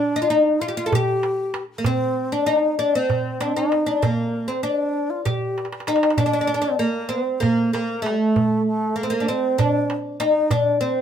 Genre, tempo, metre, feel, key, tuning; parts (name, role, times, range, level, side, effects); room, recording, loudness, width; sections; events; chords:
Turkish makam ensemble; 194 BPM (eighths); 7/8; straight; A4 = 436 Hz
oud; melody; 0.0-11.0 s; A3 to A4; -21 LUFS; left 1 dB
bright reedy wooden-headed alto flute; second line; 0.0-11.0 s; G3 to G4; -25 LUFS; right 1 dB
darbuka; percussion; 0.3-10.8 s; -25 LUFS; right 3 dB
moderate studio reverb, RT60 0.5 s; minimal, uncompressed stereo recording; -19 LUFS; side -8 dB against mid
0.0-6.2 A section; 6.2-11.0 B section
drum fill 5.6-6.2